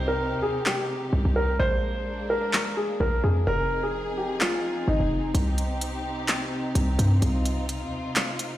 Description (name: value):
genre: hip hop, trap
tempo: 128 BPM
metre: 4/4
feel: half-time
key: C minor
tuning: A4 = 439 Hz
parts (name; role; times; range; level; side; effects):
- dark grand piano; melody; 0.0-5.3 s; Eb4 to C5; -27 LUFS; equal; tape echo
- warm studio string section; sustained chords; 0.0-8.6 s; C3 to Ab4; -31 LUFS; equal; none
- short 808-style bass; bass; 0.0-8.0 s; F1 to G2; -25 LUFS; equal; none
- trap drum kit; drums; 0.7-8.5 s; handclaps, hi-hat; -27 LUFS; equal; none
room: light reverb, studio reverb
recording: played on a big sound system in a bare room, stone room reverb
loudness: -23 LUFS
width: side -14 dB against mid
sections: 0.0-8.6 A section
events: break 0.0-5.3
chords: 0.0 Cm; 1.6 Bb7; 3.5 Fm7; 5.3 Cm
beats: 0.19 0.66 1.13 | 1.60 2.06 2.53 3.00 | 3.47 3.94 4.41 4.88 | 5.35 5.82 6.28 6.75 | 7.22 7.69 8.16